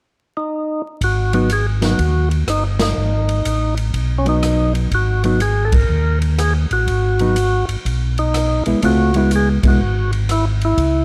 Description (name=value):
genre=soul jazz organ trio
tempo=123 BPM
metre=4/4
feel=swing 66% on 8ths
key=G# minor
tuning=A4 = 436 Hz
part: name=percussive tonewheel organ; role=melody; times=0.4-11.0 s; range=C#4 to A#4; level=-23 LUFS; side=equal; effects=slow rotary speaker
part: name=mellow tonewheel organ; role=bass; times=1.0-11.0 s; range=G1 to D#2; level=-20 LUFS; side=equal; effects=chorus vibrato
part: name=swinging big-band drum kit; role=drums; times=1.0-10.9 s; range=hi-hat, kick drum, ride cymbal, rim click, snare drum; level=-26 LUFS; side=equal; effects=none
part: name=hollow-body jazz guitar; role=accompaniment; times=1.3-9.8 s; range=F#3 to E#4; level=-21 LUFS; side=equal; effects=none
room=light reverb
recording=dark, warm production, vinyl crackle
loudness=-17 LUFS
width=mono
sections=0.0-1.0 A section; 1.0-11.0 B section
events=band accent 2.7, 5.7, 9.6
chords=0.0 N.C.; 1.0 G#m7; 8.8 C#m7